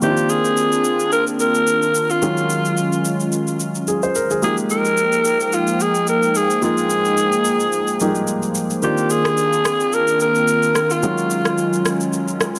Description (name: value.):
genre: amapiano.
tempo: 109 BPM.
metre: 4/4.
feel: swing 55% on 16ths.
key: F minor.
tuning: A4 = 438 Hz.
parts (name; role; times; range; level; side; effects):
growling alto saxophone; melody; 0.0-12.0 s; F4 to Bb4; -21 LUFS; equal; digital delay.
warm concert grand piano; accompaniment; 0.0-12.6 s; Eb3 to C5; -25 LUFS; equal; none.
hollow soft pad; sustained chords; 0.0-12.6 s; Eb3 to G5; -25 LUFS; equal; chorus.
electronic shaker and rim click; drums; 0.0-12.6 s; none; -28 LUFS; equal; none.
room: moderate lush hall reverb, RT60 2.6 s.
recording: none.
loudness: -18 LUFS.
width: mono.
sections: 0.0-12.6 A section.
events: none.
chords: 0.0 Cm11; 2.2 Ebm11; 4.4 Fm11; 8.8 Cm11; 11.0 Ebm11.